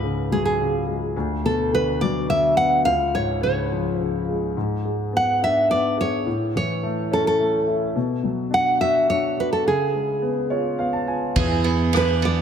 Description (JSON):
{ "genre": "acoustic folk-pop ballad", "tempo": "106 BPM", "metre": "3/4", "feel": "straight", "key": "unclear", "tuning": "A4 = 443 Hz", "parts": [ { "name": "nylon-string guitar", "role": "melody", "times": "0.0-12.4 s", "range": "G#4 to F#5", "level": "-21 LUFS", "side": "right 1 dB", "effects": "none" }, { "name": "warm grand piano", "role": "accompaniment", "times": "0.0-12.4 s", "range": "C#2 to A5", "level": "-24 LUFS", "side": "left 2 dB", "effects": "wide subtle chorus" }, { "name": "picked swing-style acoustic guitar", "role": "arpeggios", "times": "11.4-12.4 s", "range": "E3 to G#4", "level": "-23 LUFS", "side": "right 6 dB", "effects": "lush chorus, ping-pong delay" }, { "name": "mellow fretless electric bass", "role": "bass", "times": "11.4-12.4 s", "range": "E2", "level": "-21 LUFS", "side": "right 1 dB", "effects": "none" }, { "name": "unplugged drum kit", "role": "drums", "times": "11.4-12.1 s", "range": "kick drum, ride cymbal, rim click", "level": "-26 LUFS", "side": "equal", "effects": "none" } ], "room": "moderate plate reverb, RT60 2.2 s", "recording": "dreamy mix soaked in reverb", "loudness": "-19 LUFS", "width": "side -8 dB against mid", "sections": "0.0-11.4 A section; 11.4-12.4 B section", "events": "none", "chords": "0.0 C#7sus4; 1.2 Bm/D; 2.8 C#; 4.6 G#dim; 6.3 A; 8.0 Bm; 9.7 C#7; 11.4 E7" }